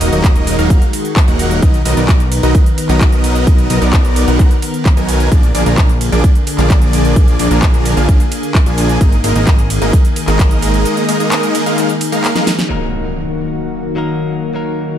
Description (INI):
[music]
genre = EDM, festival progressive house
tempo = 130 BPM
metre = 4/4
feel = straight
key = Eb harmonic minor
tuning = A4 = 441 Hz
[part]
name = lush unison pad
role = sustained chords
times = 0.0-15.0 s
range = D3 to A#4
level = -20 LUFS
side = left 1 dB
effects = chorus, sidechain pumping
[part]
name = big supersaw lead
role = riff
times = 0.0-12.5 s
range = F3 to Ab5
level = -17 LUFS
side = equal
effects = sidechain pumping, ping-pong delay
[part]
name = fat analog bass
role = bass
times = 0.0-10.9 s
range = Eb1 to B1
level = -16 LUFS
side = equal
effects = sidechain pumping
[part]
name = big-room dance drum kit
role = drums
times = 0.0-12.7 s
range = handclaps, hi-hat, ride cymbal, snare drum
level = -21 LUFS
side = right 1 dB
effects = low-pass filter on hats, small room reverb, low-pass filter on cymbals, low-pass filter on snare
[part]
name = electronic kick drum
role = drums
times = 0.2-10.5 s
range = none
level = -11 LUFS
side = equal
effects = small room reverb
[part]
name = direct-recorded clean electric guitar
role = accompaniment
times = 12.7-15.0 s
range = Gb3 to Bb4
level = -24 LUFS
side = left 4 dB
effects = sidechain pumping, ping-pong delay
[part]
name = impact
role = sound effects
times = 12.7-14.5 s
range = none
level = -25 LUFS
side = equal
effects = none
[sound]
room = light reverb, digital ambience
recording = dark, warm production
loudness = -10 LUFS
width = side -10 dB against mid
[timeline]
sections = 0.0-12.7 A section; 12.7-15.0 B section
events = drop 0.0-12.7; break 10.9-12.7; drum fill 12.4-12.7; impact 12.7-14.5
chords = 0.0 Ebm; 1.6 Bmaj7; 5.3 Bb7; 9.0 Absus2; 12.7 Ebm